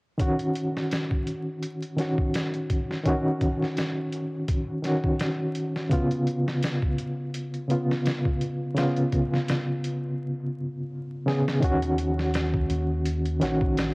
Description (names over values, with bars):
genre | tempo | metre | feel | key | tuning
trip hop | 84 BPM | 4/4 | swing 55% on 16ths | Eb minor | A4 = 440 Hz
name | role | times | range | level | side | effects
overdriven reed electric piano | accompaniment | 0.2-13.9 s | Db3 to Ab4 | -25 LUFS | equal | fast tremolo, low-pass filter, tape echo
trip hop sampler-style drum kit | drums | 0.2-13.9 s | hi-hat, kick drum, snare drum | -29 LUFS | equal | vintage 12-bit sampler grit, cassette tape
deep dub fingered electric bass | bass | 11.6-13.9 s | Bb1 to Eb2 | -28 LUFS | equal | none
room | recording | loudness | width
light reverb | home recording on cassette, vinyl crackle | -24 LUFS | side -28 dB against mid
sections
0.2-11.6 A section; 11.6-13.9 B section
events
break 10.2-11.6; drum fill 11.3-11.6; filter sweep on reed electric piano 11.6-13.9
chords
0.2 Ebm7; 5.9 Db7; 11.6 Ebm7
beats
| 0.20 0.91 1.63 2.34 | 3.06 3.77 4.48 5.20 | 5.91 6.63 7.34 8.05 | 8.77 9.48 10.20 10.91 | 11.63 12.34 13.05 13.77